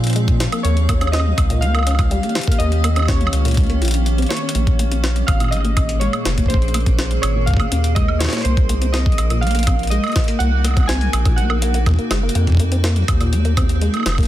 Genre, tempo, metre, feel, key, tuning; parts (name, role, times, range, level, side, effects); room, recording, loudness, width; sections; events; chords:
IDM; 123 BPM; 4/4; straight; Bb minor; A4 = 440 Hz
icy glass pad; sustained chords; 0.0-14.3 s; Bb2 to F5; -27 LUFS; equal; chorus, built-in reverb, vintage 12-bit sampler grit
round analog bass; bass; 0.0-14.2 s; F1 to Bb2; -18 LUFS; equal
jungle sampler-style drum kit; drums; 0.0-14.3 s; hi-hat, snare drum, woodblock; -24 LUFS; right 1 dB; small room ambience
deep acid bass; arpeggios; 0.2-14.3 s; Bb2 to F4; -25 LUFS; left 2 dB; digital delay
electronic kick drum; drums; 0.3-14.3 s; -17 LUFS; equal; small room ambience
warbly lo-fi synth keys; melody; 0.6-11.8 s; C5 to Ab5; -26 LUFS; right 2 dB; chorus, tape echo
little or no reverb; dense, heavily limited modern master; -15 LUFS; side -13 dB against mid
0.0-4.5 A section; 4.5-14.3 A section
drum fill 4.3
0.0 Fm7; 0.6 Eb7; 4.5 Bbm9; 8.5 Cm7b5; 12.4 Fm7